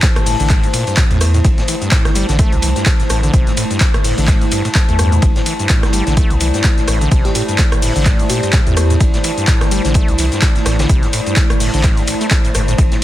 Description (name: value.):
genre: acid house.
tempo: 127 BPM.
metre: 4/4.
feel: swing 57% on 16ths.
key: A minor.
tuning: A4 = 438 Hz.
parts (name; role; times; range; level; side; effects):
dark analog pad; sustained chords; 0.0-13.0 s; A3 to D5; -24 LUFS; equal; chorus, phaser, sidechain pumping.
acid bass, saw; riff; 0.0-13.0 s; A1 to A3; -21 LUFS; equal; vintage 12-bit sampler grit.
electronic kick drum; drums; 0.0-12.9 s; none; -14 LUFS; equal; overdrive.
punchy analog drum machine; drums; 0.0-13.0 s; cabasa, handclaps, hi-hat, rim click; -20 LUFS; equal; overdrive.
vintage drum kit; drums; 0.0-13.0 s; hi-hat, ride cymbal, snare drum; -27 LUFS; equal; sidechain pumping on cymbals, high-pass filter on cymbals, sidechain pumping on hats, high-pass filter on hats, high-pass filter on snare, high-pass filter on room.
warbly tape-like pad; texture; 0.0-13.0 s; E4 to A5; -24 LUFS; left 3 dB; chorus, built-in reverb, phaser, sidechain pumping.
saturated sub bass; bass; 0.2-12.9 s; G1 to E2; -16 LUFS; equal; sidechain pumping.
bell-like FM electric piano; melody; 7.2-9.0 s; G4; -28 LUFS; right 5 dB; chorus, dub echo.
room: little or no reverb.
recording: dense, heavily limited modern master.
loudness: -12 LUFS.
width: side -14 dB against mid.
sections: 0.0-13.0 A section.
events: none.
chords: 0.0 Am.